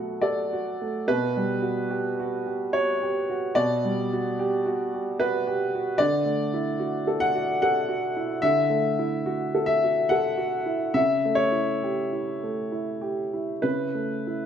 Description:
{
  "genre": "neoclassical minimalist piano",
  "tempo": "62-76 BPM",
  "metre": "3/4",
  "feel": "rubato",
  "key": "unclear",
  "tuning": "A4 = 439 Hz",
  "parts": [
    { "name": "warm upright piano", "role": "solo", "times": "0.0-14.5 s", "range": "B2 to F#5", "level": "-23 LUFS", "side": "equal", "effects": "none" }
  ],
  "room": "moderate large studio reverb, RT60 1.2 s",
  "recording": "band playing live in one room",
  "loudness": "-23 LUFS",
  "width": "side -8 dB against mid",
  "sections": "0.0-14.5 A section",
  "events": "none",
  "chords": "0.0 Bm7; 1.1 Gmaj7/B; 6.0 Dadd9; 11.0 A7/C#"
}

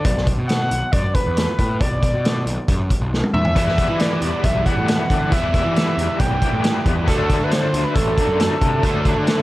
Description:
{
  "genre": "indie rock",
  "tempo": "137 BPM",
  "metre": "4/4",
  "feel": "straight",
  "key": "unclear",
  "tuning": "A4 = 442 Hz",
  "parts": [
    { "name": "overdriven synth lead", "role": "melody", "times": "0.0-9.4 s", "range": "A4 to G5", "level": "-23 LUFS", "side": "equal", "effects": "plate reverb" },
    { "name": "fuzz picked electric bass", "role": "bass", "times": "0.0-9.4 s", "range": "A1 to E3", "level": "-22 LUFS", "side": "equal", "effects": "overdrive" },
    { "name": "vintage drum kit", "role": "drums", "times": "0.0-9.4 s", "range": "hi-hat, kick drum, snare drum, toms", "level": "-20 LUFS", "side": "equal", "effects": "none" },
    { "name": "distorted electric guitar", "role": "riff", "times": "3.5-9.4 s", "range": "E2 to F#4", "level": "-26 LUFS", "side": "right 5 dB", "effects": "distortion, ensemble chorus, analog delay" },
    { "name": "raw garage guitar", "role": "riff", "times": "3.6-9.4 s", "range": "D3 to E4", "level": "-26 LUFS", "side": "left 7 dB", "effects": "overdrive, tremolo" }
  ],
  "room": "light reverb",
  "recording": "none",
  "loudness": "-16 LUFS",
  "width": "side -17 dB against mid",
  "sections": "0.0-9.4 A section",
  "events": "drum fill 3.1-3.6",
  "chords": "0.1 Bm; 3.3 Em; 7.1 D"
}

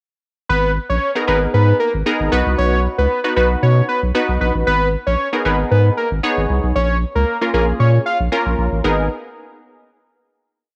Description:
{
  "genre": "dance-pop",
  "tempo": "115 BPM",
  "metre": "4/4",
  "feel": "straight",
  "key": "G# dorian",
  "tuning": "A4 = 441 Hz",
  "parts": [
    { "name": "fat analog lead", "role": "melody", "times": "0.5-8.2 s", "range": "A#4 to E#5", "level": "-21 LUFS", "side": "equal", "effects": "slapback echo" },
    { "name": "saturated sub bass", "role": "bass", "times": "0.5-9.1 s", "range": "G#1 to B2", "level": "-19 LUFS", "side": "equal", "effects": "none" },
    { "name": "funky polysynth comp", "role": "accompaniment", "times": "1.2-9.1 s", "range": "A#3 to C#5", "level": "-22 LUFS", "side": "equal", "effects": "chorus" }
  ],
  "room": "light reverb",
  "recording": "none",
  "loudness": "-17 LUFS",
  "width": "mono",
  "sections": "0.5-8.8 verse; 8.8-10.8 final chord",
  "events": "none",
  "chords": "0.5 G#madd9; 2.3 B; 4.7 G#madd9; 6.8 A#m; 8.8 G#madd9"
}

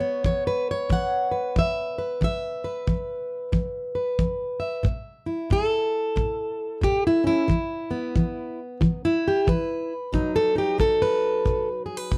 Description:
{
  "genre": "acoustic country blues, solo or duo",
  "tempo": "91 BPM",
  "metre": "4/4",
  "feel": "swing 63% on 8ths",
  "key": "unclear",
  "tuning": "A4 = 442 Hz",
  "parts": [
    { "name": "fingerpicked plugged-in steel-string acoustic guitar", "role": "melody", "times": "0.0-12.2 s", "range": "A2 to F#5", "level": "-25 LUFS", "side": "equal", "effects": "none" },
    { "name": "kick drum", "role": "drums", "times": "0.2-12.2 s", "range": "none", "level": "-28 LUFS", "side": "equal", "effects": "none" }
  ],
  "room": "little or no reverb",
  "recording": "dark, warm production",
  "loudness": "-25 LUFS",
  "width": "mono",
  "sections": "0.0-12.2 A section",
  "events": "none",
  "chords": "0.0 E5; 4.8 A5; 7.5 E5; 10.1 B"
}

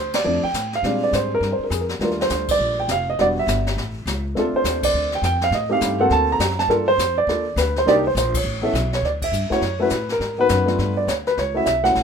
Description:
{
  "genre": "jazz piano trio",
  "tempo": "205 BPM",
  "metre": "4/4",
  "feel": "swing 62% on 8ths",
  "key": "Bb major, D major from 9.0 s",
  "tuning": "A4 = 440 Hz",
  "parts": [
    { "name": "dark baby grand piano", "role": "melody", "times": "0.0-12.0 s", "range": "F3 to Bb5", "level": "-19 LUFS", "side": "right 1 dB", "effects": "none" },
    { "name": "upright bass", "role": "bass", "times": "0.0-12.0 s", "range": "E1 to Bb2", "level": "-26 LUFS", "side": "left 1 dB", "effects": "none" },
    { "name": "jazz brush drum kit", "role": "drums", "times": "0.1-12.0 s", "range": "brushed snare drum, crash cymbal, hi-hat, kick drum, ride cymbal, snare drum", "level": "-28 LUFS", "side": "left 3 dB", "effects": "none" }
  ],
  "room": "light reverb",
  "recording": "minimal, uncompressed stereo recording",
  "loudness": "-18 LUFS",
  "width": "side -6 dB against mid",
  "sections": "0.0-9.0 A section; 9.0-12.0 B section",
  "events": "band accent 0.1, 2.5, 4.8, 8.3, 9.2",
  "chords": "0.0 Bbmaj9 (rootless); 0.8 Bb13; 2.0 Ebmaj9#11; 3.2 Em7; 3.8 A; 4.4 Dm7; 5.5 Am7b5; 6.1 D7b13; 6.7 Gm9; 7.9 Cm9; 8.4 Aadd9; 9.0 Dmaj9; 10.2 G#m7; 10.8 G9; 11.4 F#m7"
}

